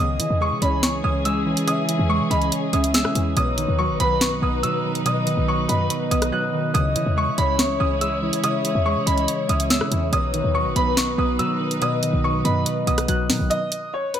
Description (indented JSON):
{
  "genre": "hip hop, drill",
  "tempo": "142 BPM",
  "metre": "4/4",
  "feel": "half-time",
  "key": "C# minor",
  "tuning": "A4 = 438 Hz",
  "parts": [
    { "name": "clear concert grand piano", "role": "melody", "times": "0.0-14.2 s", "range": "B4 to F#6", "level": "-25 LUFS", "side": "right 2 dB", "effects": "tape echo" },
    { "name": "gliding portamento lead", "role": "second line", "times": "0.0-13.5 s", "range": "B4 to E5", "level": "-30 LUFS", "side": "left 4 dB", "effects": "chorus, tape echo" },
    { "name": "glassy digital keys", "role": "accompaniment", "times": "0.0-13.5 s", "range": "B2 to C#5", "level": "-25 LUFS", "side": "right 1 dB", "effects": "chorus" },
    { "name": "dark symphonic string section", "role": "sustained chords", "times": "0.0-13.5 s", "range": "E3 to C#5", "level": "-29 LUFS", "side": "left 2 dB", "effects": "none" },
    { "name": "short 808-style bass", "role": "bass", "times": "0.0-13.5 s", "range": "A1 to E3", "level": "-24 LUFS", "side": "equal", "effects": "none" },
    { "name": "drill drum kit", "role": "drums", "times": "0.2-14.2 s", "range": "hi-hat, rim click, snare drum", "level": "-24 LUFS", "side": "equal", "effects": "none" }
  ],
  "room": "light reverb",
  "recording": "none",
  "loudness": "-19 LUFS",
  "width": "side -9 dB against mid",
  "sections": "0.0-13.5 A section",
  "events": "drums muted 6.3-6.7; drum fill 13.1-13.5; break 13.5-14.2",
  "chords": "0.0 C#m; 3.4 B; 6.7 C#m; 10.1 B; 13.5 N.C."
}